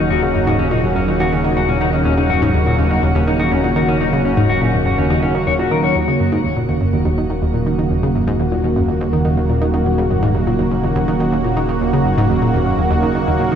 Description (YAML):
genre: ambient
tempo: 123 BPM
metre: 4/4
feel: straight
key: Eb minor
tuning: A4 = 440 Hz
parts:
  - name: lush unison pad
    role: sustained chords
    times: 0.0-13.6 s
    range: Db3 to Gb4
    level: -18 LUFS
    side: right 1 dB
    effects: chorus, shimmer reverb
  - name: mellow electric guitar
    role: arpeggios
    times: 0.0-6.0 s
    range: Db4 to Db5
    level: -20 LUFS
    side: moving between left 7 dB and right 1 dB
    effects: auto-pan, shimmer reverb, tape echo
  - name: analog pluck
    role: riff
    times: 0.0-13.6 s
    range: Eb2 to Eb3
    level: -18 LUFS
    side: equal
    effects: chorus, tape echo
  - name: fat analog bass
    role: bass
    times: 0.0-13.6 s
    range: Eb1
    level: -23 LUFS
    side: equal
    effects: none
room: moderate lush hall reverb, RT60 2.8 s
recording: none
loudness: -14 LUFS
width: side -8 dB against mid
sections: 0.0-6.0 A section; 6.0-13.6 B section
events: none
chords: 0.0 Ebm7